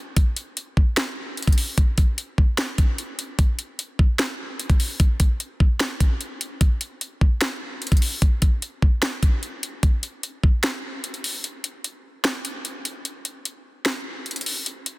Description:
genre	hip hop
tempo	149 BPM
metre	4/4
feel	half-time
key	none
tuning	none
part	trap drum kit	drums	0.2-15.0 s	finger snaps, hi-hat, kick drum, snare drum	-20 LUFS	equal	none
room	little or no reverb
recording	dense, heavily limited modern master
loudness	-21 LUFS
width	side -21 dB against mid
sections	0.0-11.4 A section; 11.4-15.0 B section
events	break 10.6-11.4, 11.4-15.0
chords	none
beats	| 0.17 0.57 0.97 1.37 | 1.78 2.18 2.58 2.98 | 3.39 3.79 4.19 4.59 | 5.00 5.40 5.80 6.21 | 6.61 7.01 7.41 7.82 | 8.22 8.62 9.03 9.43 | 9.83 10.23 10.64 11.04 | 11.44 11.84 12.25 12.65 | 13.05 13.45 13.86 14.26 | 14.66

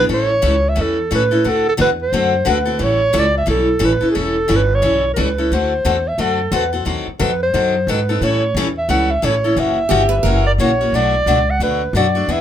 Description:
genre	acoustic string swing (jazz manouche)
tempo	177 BPM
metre	4/4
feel	swing 60% on 8ths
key	A mixolydian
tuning	A4 = 443 Hz
part	mellow clarinet	melody	0.0-12.4 s	G#4 to F#5	-18 LUFS	right 2 dB	slapback echo
part	picked steel-string acoustic guitar	accompaniment	0.0-12.4 s	B2 to A4	-19 LUFS	left 3 dB	none
part	upright bass	bass	0.0-12.4 s	E1 to A2	-20 LUFS	equal	none
part	picked steel-string acoustic guitar	second line	9.9-10.5 s	G4 to B4	-21 LUFS	right 3 dB	none
room	light reverb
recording	none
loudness	-14 LUFS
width	side -10 dB against mid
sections	0.1-12.4 A section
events	none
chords	0.1 A7; 1.5 D7; 2.8 A7; 5.5 D7; 6.9 D#dim7; 8.2 A7; 9.6 F#7b9; 10.9 Bm7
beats	| 0.10 0.44 0.78 1.11 | 1.45 1.79 2.13 2.46 | 2.80 3.14 3.48 3.82 | 4.15 4.49 4.83 5.17 | 5.51 5.84 6.18 6.52 | 6.86 7.20 7.54 7.87 | 8.21 8.55 8.89 9.23 | 9.57 9.91 10.24 10.58 | 10.92 11.26 11.60 11.94 | 12.28

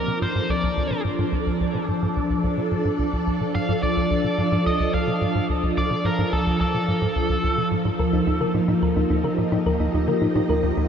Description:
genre	ambient, sequencer-driven space music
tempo	108 BPM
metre	4/4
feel	straight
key	D phrygian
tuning	A4 = 437 Hz
part	biting lead guitar	melody	0.0-7.7 s	A4 to F5	-28 LUFS	equal	overdrive, shimmer reverb, tape echo
part	phased string machine	sustained chords	0.0-10.9 s	F3 to Eb5	-23 LUFS	equal	ensemble chorus, phaser, shimmer reverb
part	tight sequencer bass	riff	0.0-10.9 s	D2 to D3	-25 LUFS	equal	wide subtle chorus, tape echo
part	thumb-piano-like synth pluck	arpeggios	8.0-10.9 s	Eb4 to Bb4	-25 LUFS	left 1 dB	chorus, auto-pan, shimmer reverb, tape echo
room	wet huge ambient reverb, RT60 8.3 s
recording	dreamy mix soaked in reverb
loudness	-20 LUFS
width	side -8 dB against mid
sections	0.0-10.9 A section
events	filter sweep on analog synth bass 0.0-10.9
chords	0.0 Dm; 8.0 Ebadd9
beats	0.21 0.77 | 1.33 1.88 2.44 2.99 | 3.55 4.10 4.66 5.21 | 5.77 6.33 6.88 7.44 | 7.99 8.55 9.10 9.66 | 10.21 10.77

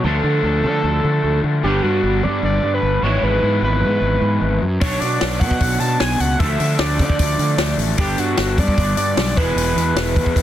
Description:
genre	indie rock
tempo	151 BPM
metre	4/4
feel	straight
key	unclear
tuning	A4 = 440 Hz
part	overdriven synth lead	melody	0.0-10.4 s	F#4 to A5	-21 LUFS	right 1 dB	distortion, analog delay
part	electric guitar through a small old amp	riff	0.0-10.4 s	G#2 to C#5	-25 LUFS	right 7 dB	analog chorus
part	raw garage guitar	riff	0.0-10.4 s	G2 to E4	-24 LUFS	left 5 dB	overdrive
part	fuzz fingered electric bass	bass	0.0-10.4 s	E1 to D3	-20 LUFS	equal	overdrive
part	compact cocktail drum kit	drums	4.8-10.4 s	hi-hat, kick drum, snare drum	-21 LUFS	left 1 dB	soft clipping on snare
room	light reverb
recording	dense, heavily limited modern master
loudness	-15 LUFS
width	side -12 dB against mid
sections	0.0-10.4 A section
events	none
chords	0.0 Dm; 1.6 G; 3.0 Eadd9/G#; 4.8 Bmadd9; 6.4 Dm; 8.0 G; 9.4 E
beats	| 0.05 0.45 0.84 1.24 | 1.64 2.04 2.44 2.83 | 3.23 3.63 4.02 4.42 | 4.82 5.21 5.61 6.01 | 6.40 6.80 7.20 7.59 | 7.99 8.38 8.78 9.17 | 9.57 9.96 10.36

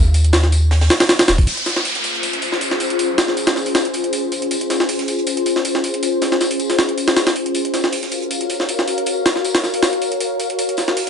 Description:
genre	drum and bass, jungle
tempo	158 BPM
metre	4/4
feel	swing 53% on 16ths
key	unclear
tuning	A4 = 440 Hz
part	soft dub sub bass	bass	0.0-1.5 s	Eb1 to Eb2	-14 LUFS	equal	tube saturation
part	crisp fusion drum kit	drums	0.1-11.1 s	hi-hat, snare drum, tambourine	-29 LUFS	left 1 dB	high-pass filter on hats, high-pass filter on snare, high-pass filter on perc, high-pass filter on room
part	jungle sampler-style drum kit	drums	0.1-11.1 s	hi-hat, kick drum, snare drum	-18 LUFS	equal	overdrive, high-pass filter on kick, high-pass filter on hats, high-pass filter on snare
part	ethereal airy pad	sustained chords	2.1-11.1 s	Db4 to F5	-20 LUFS	left 2 dB	ensemble chorus, built-in reverb
part	downlifter	sound effects	1.5-4.5 s	none	-24 LUFS	equal	none
room	light reverb, studio reverb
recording	nothing above 10.6 kHz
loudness	-15 LUFS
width	side -7 dB against mid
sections	0.0-1.5 A section; 1.5-11.1 B section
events	none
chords	0.0 N.C.; 1.5 Dbmaj7; 7.5 Gbmaj7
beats	0.33 0.71 1.09 | 1.47 1.85 2.23 2.61 | 2.99 3.37 3.75 4.13 | 4.51 4.89 5.27 5.65 | 6.03 6.41 6.79 7.17 | 7.55 7.93 8.31 8.69 | 9.07 9.45 9.83 10.21 | 10.59 10.97

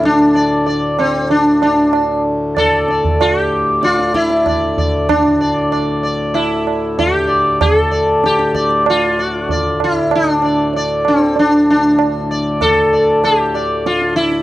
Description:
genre	indian classical, Hindustani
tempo	96 BPM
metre	4/4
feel	straight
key	D raga kafi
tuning	A4 = 440 Hz
part	sitar	melody	0.0-14.4 s	C4 to D5	-13 LUFS	equal	none
part	hand-pumped harmonium	drone	0.0-14.4 s	D2 to A2	-22 LUFS	left 2 dB	none
part	tabla	percussion	0.0-14.4 s	none	-20 LUFS	right 6 dB	none
room	little or no reverb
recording	dry, close 1970s-style studio recording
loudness	-12 LUFS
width	side -15 dB against mid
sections	0.0-5.1 A section; 5.1-14.4 B section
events	none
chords	none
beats	| 0.03 0.67 1.30 1.94 | 2.57 3.20 3.83 4.47 | 5.10 5.73 6.36 6.99 | 7.61 8.24 8.87 9.49 | 10.12 10.74 11.37 11.99 | 12.61 13.23 13.85

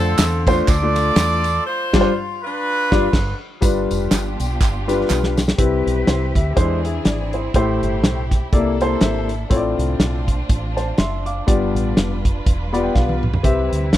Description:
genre	uptempo gospel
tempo	122 BPM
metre	4/4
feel	swing 57% on 8ths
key	unclear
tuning	A4 = 440 Hz
part	clear horn section	melody	0.0-3.4 s	C4 to D5	-21 LUFS	right 1 dB	none
part	warm grand piano	accompaniment	0.0-14.0 s	G2 to D6	-20 LUFS	left 3 dB	none
part	deep dub fingered electric bass	bass	0.0-14.0 s	E1 to F2	-22 LUFS	right 1 dB	none
part	warm soul drum kit	drums	0.2-14.0 s	crash cymbal, hi-hat, kick drum, ride cymbal, snare drum, toms	-18 LUFS	equal	none
part	handclaps and tambourine	percussion	0.2-5.5 s	none	-28 LUFS	right 3 dB	none
part	warm studio string section	sustained chords	3.6-14.0 s	G3 to B4	-30 LUFS	right 1 dB	none
room	little or no reverb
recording	dry, close 1970s-style studio recording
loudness	-16 LUFS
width	side -13 dB against mid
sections	0.0-3.6 A section; 3.6-5.6 B section; 5.6-14.0 C section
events	band accent 1.7-3.6; drum fill 5.1-5.6, 13.0-13.4; grand piano fill 8.8-9.5, 12.5-13.4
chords	0.0 Dm7; 1.7 G7sus4; 2.6 G7; 5.6 Cmaj7; 6.6 E7b13; 7.5 Am7; 8.5 C13; 9.5 F6/A; 11.5 G7; 13.4 Cmaj7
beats	0.19 0.68 1.17 | 1.66 2.15 2.64 3.13 | 3.62 4.11 4.60 5.09 | 5.58 6.08 6.57 7.06 | 7.55 8.04 8.53 9.02 | 9.51 10.01 10.50 10.99 | 11.48 11.97 12.46 12.95 | 13.44 13.94

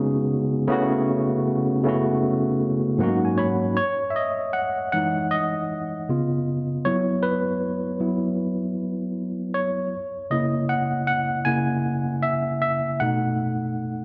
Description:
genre	R&B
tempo	78 BPM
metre	4/4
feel	swing 62% on 16ths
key	C# minor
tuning	A4 = 440 Hz
part	tine electric piano	solo	0.0-14.0 s	G#2 to B5	-24 LUFS	equal	overdrive
room	moderate echo chamber reverb, RT60 2.0 s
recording	dark, warm production, nothing above 7.9 kHz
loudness	-24 LUFS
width	mono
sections	0.0-3.8 A section; 3.8-14.0 B section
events	tine electric piano fill 2.6-3.8; tine electric piano solo 3.8-14.0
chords	0.0 C#9sus4; 0.7 A69/C#; 3.0 G#9sus4; 3.8 Emaj7; 6.1 C#7; 6.8 F#7sus4; 9.9 C#m6; 13.0 B7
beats	| 0.69 1.46 2.23 3.00 | 3.77 4.54 5.31 6.08 | 6.85 7.62 8.39 9.15 | 9.92 10.69 11.46 12.23 | 13.00 13.77

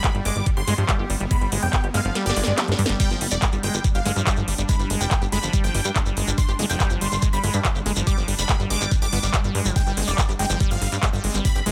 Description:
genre	psychedelic trance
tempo	142 BPM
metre	4/4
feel	straight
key	unclear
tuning	A4 = 440 Hz
part	supersaw stab	melody	0.0-11.7 s	D5 to D6	-32 LUFS	equal	phaser, sidechain pumping, dub echo
part	evolving wavetable pad	sustained chords	0.0-11.7 s	G3 to D4	-36 LUFS	equal	ensemble chorus, built-in reverb, sidechain pumping
part	liquid acid bass	riff	0.0-11.7 s	F3 to G4	-32 LUFS	equal	chorus, sidechain pumping, dub echo
part	drum and bass drum kit	drums	0.0-11.7 s	crash cymbal, handclaps, hi-hat, snare drum	-29 LUFS	equal	none
part	electronic kick drum	drums	0.0-11.5 s	none	-24 LUFS	equal	none
part	plucky analog bass	bass	0.1-11.7 s	F1 to G2	-27 LUFS	equal	none
part	swell	sound effects	2.4-3.0 s	none	-38 LUFS	equal	none
part	shekere	percussion	3.0-11.6 s	none	-33 LUFS	equal	none
room	little or no reverb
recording	none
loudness	-22 LUFS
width	mono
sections	0.0-11.7 A section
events	kick drops out 2.2-3.0; drum fill 2.2-3.0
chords	0.0 G5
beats	0.04 0.46 0.89 | 1.31 1.73 2.15 2.58 | 3.00 3.42 3.84 4.27 | 4.69 5.11 5.53 5.96 | 6.38 6.80 7.22 7.65 | 8.07 8.49 8.91 9.34 | 9.76 10.18 10.60 11.03 | 11.45

